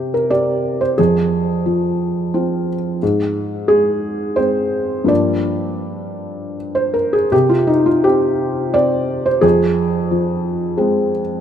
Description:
neoclassical minimalist piano; 78-91 BPM; 3/4; rubato; A4 = 439 Hz
felt-muted upright piano; solo; 0.0-11.4 s; F2 to D5; -15 LUFS; equal
moderate lush hall reverb, RT60 2.6 s; rough home demo mix; -14 LUFS; side -9 dB against mid
0.0-11.4 A section
0.0 C5; 1.0 Fm; 3.0 Ab; 5.1 Gm7; 7.3 N.C.; 9.4 Fm
0.31 | 0.98 1.66 2.33 | 3.02 3.69 4.37 | 5.09 5.83 6.57 | 7.32 8.05 8.75 | 9.44 10.12 10.79

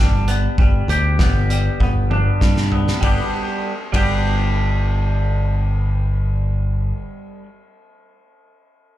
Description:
indie rock; 98 BPM; 4/4; straight; G major; A4 = 441 Hz
twangy electric guitar; riff; 0.0-7.5 s; G3 to G4; -23 LUFS; equal; double-tracked left and right, slapback echo
modern bright fingered electric bass; bass; 0.0-6.9 s; G1 to G2; -18 LUFS; equal
loose indie drum kit; drums; 0.3-4.1 s; hi-hat, kick drum, ride cymbal, snare drum, toms; -21 LUFS; equal
small room ambience; live gig heard through the venue's PA, club reverb; -16 LUFS; side -14 dB against mid
0.0-3.0 A section; 3.0-5.5 B section
drum fill 1.8-3.0
0.0 G
| 0.58 1.19 1.80 2.41 | 3.02 3.62 4.23 4.84

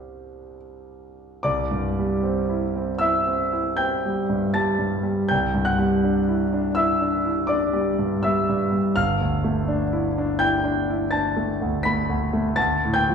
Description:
classical, impressionist solo piano; 66-87 BPM; 5/4; rubato; C major; A4 = 440 Hz
clear concert grand piano; solo; 0.0-13.1 s; G1 to B6; -20 LUFS; equal
wet recital hall reverb, RT60 1.4 s; heard from further back in the room; -20 LUFS; side -6 dB against mid
0.0-1.4 A section; 1.4-13.1 A section
0.0 Cadd9; 5.3 Em7/C; 9.0 G13; 12.6 D5
0.56 | 1.44 2.23 3.00 3.79 4.56 | 5.29 6.04 6.78 7.52 8.25 | 8.97 9.69 10.39 11.12 11.84 | 12.59

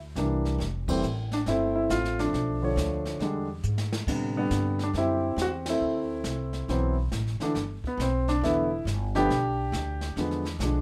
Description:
jazz piano trio; 138 BPM; 4/4; swing 65% on 8ths; G major; A4 = 440 Hz
upright bass; bass; 0.0-10.8 s; E1 to A2; -33 LUFS; equal
warm concert grand piano; melody; 0.2-10.8 s; C3 to C#5; -29 LUFS; equal
jazz brush drum kit; drums; 0.2-10.8 s; brushed snare drum, crash cymbal, hi-hat, kick drum, ride cymbal, snare drum; -39 LUFS; equal
wet studio reverb, RT60 0.5 s; rough home demo mix; -28 LUFS; mono
0.0-10.8 A section
band accent 0.8, 5.6; drum fill 3.6-4.1
0.0 C9; 0.6 Fmaj7; 2.3 Bm7b5; 3.2 E7#9; 4.1 Am11; 5.8 D7sus2; 7.6 G69; 9.3 G/B; 10.2 E7b9
0.16 | 0.59 1.03 1.47 1.90 | 2.34 2.77 3.21 3.64 | 4.08 4.51 4.95 5.38 | 5.82 6.25 6.69 7.12 | 7.56 7.99 8.43 8.86 | 9.30 9.73 10.17 10.60

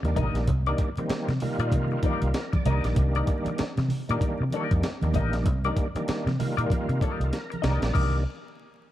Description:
funk; 96 BPM; 4/4; swing 60% on 16ths; C dorian; A4 = 440 Hz
clean electric guitar; accompaniment; 0.0-8.2 s; Eb4 to Eb5; -33 LUFS; left 8 dB; wah
overdriven tonewheel organ; stabs; 0.0-8.2 s; Eb3 to D5; -31 LUFS; right 1 dB; chorus vibrato, fast rotary speaker
vintage muted fingered electric bass; bass; 0.0-8.2 s; A1 to C3; -26 LUFS; equal
breakbeat sampler-style drum kit; drums; 0.0-8.1 s; crash cymbal, hi-hat, kick drum, snare drum; -28 LUFS; equal
congas; percussion; 0.1-8.2 s; -34 LUFS; right 3 dB
little or no reverb; dark, warm production, vinyl crackle; -24 LUFS; side -13 dB against mid
0.0-7.9 A section
tonewheel organ fill 2.0-3.0, 6.7-7.9; drum fill 7.3-7.9
0.0 Cm9
| 0.47 1.09 1.72 2.34 | 2.96 3.58 4.21 4.83 | 5.45 6.08 6.70 7.32 | 7.95

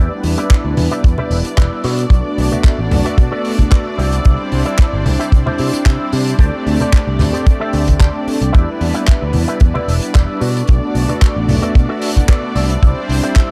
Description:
nu-disco, nu disco; 112 BPM; 4/4; swing 53% on 16ths; E minor; A4 = 440 Hz
warm analog pad; accompaniment; 0.0-13.5 s; G3 to D5; -23 LUFS; equal; chorus, sidechain pumping, delay
rich studio string section; sustained chords; 0.0-13.5 s; D4 to D5; -29 LUFS; equal; sidechain pumping
electric guitar with an envelope filter; riff; 0.0-13.5 s; E4 to E5; -27 LUFS; equal; ensemble chorus, delay
picked electric bass; bass; 0.0-13.2 s; E1 to C3; -20 LUFS; equal
damped 70s drum kit; drums; 0.2-13.5 s; handclaps, hi-hat; -28 LUFS; equal
kick drum; drums; 0.5-13.5 s; -12 LUFS; equal
congas; percussion; 0.8-12.3 s; -22 LUFS; equal
small room ambience; dark, warm production; -15 LUFS; mono
0.0-13.5 A section
0.0 Em7; 1.8 Bm7; 4.0 Cadd9; 6.4 D7sus4; 8.5 Em7; 10.4 Bm7; 12.6 Cadd9
0.50 1.04 1.57 | 2.11 2.65 3.18 3.72 | 4.25 4.79 5.32 5.86 | 6.39 6.93 7.47 8.00 | 8.54 9.07 9.61 10.14 | 10.68 11.22 11.75 12.29 | 12.82 13.36

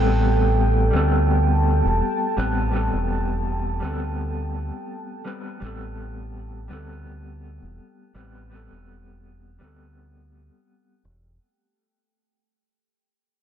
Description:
trip hop; 83 BPM; 4/4; straight; A minor; A4 = 440 Hz
mellow electric guitar; accompaniment; 0.0-11.0 s; G3 to B4; -28 LUFS; left 3 dB; tremolo, low-pass filter, tape echo
deep dark ambient pad; sustained chords; 0.0-11.4 s; A4 to A5; -27 LUFS; right 2 dB; chorus, built-in reverb, vintage 12-bit sampler grit
deep dub fingered electric bass; bass; 0.0-11.4 s; E1 to D2; -23 LUFS; equal
light reverb; dense, heavily limited modern master; -19 LUFS; side -9 dB against mid
0.0-11.4 A section
fade-out 0.0-11.4
0.0 Am9
0.57 1.29 2.01 | 2.74 3.46 4.18 4.91 | 5.63 6.35 7.08 7.80 | 8.52 9.24 9.97 10.69

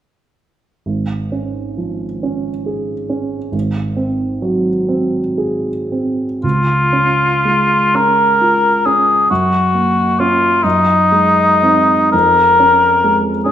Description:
classical, romantic duo for cor anglais and grand piano; 36-47 BPM (dotted quarters); 6/8; rubato; Db major; A4 = 440 Hz
dark concert grand piano; accompaniment; 0.9-13.5 s; Ab1 to Ab4; -17 LUFS; right 2 dB
warm cor anglais; melody; 6.4-13.5 s; Eb4 to Bb4; -11 LUFS; left 2 dB
wet recital hall reverb, RT60 1.5 s; minimal, uncompressed stereo recording; -12 LUFS; side -10 dB against mid
0.9-6.4 A section; 6.4-13.5 B section
0.9 Db/Ab; 3.5 Ab7; 6.4 Db; 9.3 Gbmaj7; 10.6 Ab7/Gb; 12.1 Db/F
| 0.87 2.24 | 3.54 4.89 | 6.44 7.95 | 9.30 10.64 | 12.13 13.47

